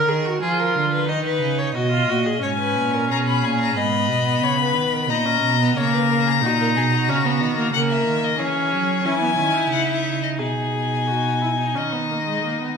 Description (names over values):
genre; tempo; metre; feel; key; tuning
classical, baroque-style fugue for string quartet; 90 BPM; 4/4; straight; unclear; A4 = 441 Hz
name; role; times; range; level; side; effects
warm violin; second line; 0.0-12.8 s; D#4 to Eb5; -25 LUFS; left 3 dB; none
rich viola; accompaniment; 0.0-12.8 s; G#3 to Bb4; -24 LUFS; right 1 dB; none
dark cello; bass; 0.0-12.8 s; Ab2 to F#3; -24 LUFS; right 4 dB; none
warm violin; melody; 2.4-12.8 s; C#5 to Cb6; -23 LUFS; left 8 dB; none
room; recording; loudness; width
wet recital hall reverb, RT60 1.7 s; minimal, uncompressed stereo recording; -18 LUFS; side -6 dB against mid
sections
0.0-2.4 A section; 2.4-12.8 B section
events
none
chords
0.0 Bb7; 1.1 Ebm; 2.4 Abm; 3.8 Abmadd11; 5.1 Bbm; 7.7 A#m7b5/C#; 10.4 G#m/B; 11.8 D#5